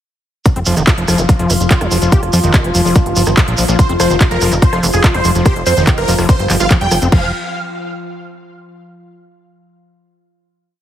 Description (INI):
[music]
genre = psychedelic trance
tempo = 144 BPM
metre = 4/4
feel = straight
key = unclear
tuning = A4 = 440 Hz
[part]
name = evolving wavetable pad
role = sustained chords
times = 0.5-7.2 s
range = F3 to F4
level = -21 LUFS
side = left 2 dB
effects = phaser, built-in reverb, sidechain pumping
[part]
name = overdriven acid bass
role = riff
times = 0.5-7.3 s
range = Eb3 to G4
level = -19 LUFS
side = moving between left 4 dB and right 2 dB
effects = distortion, auto-pan, sidechain pumping, dub echo
[part]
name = electronic kick drum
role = drums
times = 0.5-7.2 s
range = none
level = -12 LUFS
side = equal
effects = small room ambience
[part]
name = techno drum kit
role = drums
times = 0.5-7.2 s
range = crash cymbal, handclaps, hi-hat, rim click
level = -20 LUFS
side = equal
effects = small room ambience
[part]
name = shekere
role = percussion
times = 0.5-7.1 s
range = none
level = -22 LUFS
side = right 3 dB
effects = none
[part]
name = plucky analog bass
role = bass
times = 0.6-7.3 s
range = F1 to F2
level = -16 LUFS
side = equal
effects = none
[part]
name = dense compressed supersaw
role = melody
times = 3.8-7.3 s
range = Ab4 to G5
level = -19 LUFS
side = right 2 dB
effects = phaser, cassette tape, sidechain pumping, digital delay
[sound]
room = light reverb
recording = heavily compressed radio sound, multiband compression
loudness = -10 LUFS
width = side -11 dB against mid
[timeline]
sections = 0.5-7.1 drop; 7.1-8.8 final chord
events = drop 0.5-7.1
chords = 0.5 F5; 7.1 N.C.